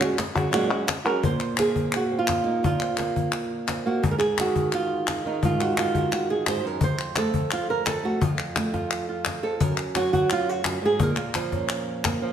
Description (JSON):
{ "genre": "flamenco", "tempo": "172 BPM", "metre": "4/4", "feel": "straight", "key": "Bb minor", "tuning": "A4 = 440 Hz", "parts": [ { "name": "flamenco guitar", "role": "melody", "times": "0.0-12.3 s", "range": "F2 to C5", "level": "-24 LUFS", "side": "right 2 dB", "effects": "slapback echo" }, { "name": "palmas hand claps", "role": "percussion", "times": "0.0-12.2 s", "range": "none", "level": "-30 LUFS", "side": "left 4 dB", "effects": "none" }, { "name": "cajon", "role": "percussion", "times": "0.2-12.2 s", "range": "none", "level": "-28 LUFS", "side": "left 3 dB", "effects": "none" } ], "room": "wet stone room reverb, RT60 1.3 s", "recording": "none", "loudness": "-22 LUFS", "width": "side -9 dB against mid", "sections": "0.0-1.2 A section; 1.2-12.3 B section", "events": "none", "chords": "0.0 Gbadd9; 1.2 Bbsus2; 4.0 Ab5; 6.8 F; 9.6 Gb; 11.0 Bbm", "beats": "0.19 0.54 0.89 | 1.24 1.59 1.94 2.29 | 2.63 2.98 3.33 3.68 | 4.03 4.38 4.73 5.08 | 5.42 5.77 6.12 6.47 | 6.82 7.17 7.51 7.86 | 8.21 8.56 8.91 9.26 | 9.61 9.95 10.30 10.65 | 11.00 11.35 11.70 12.04" }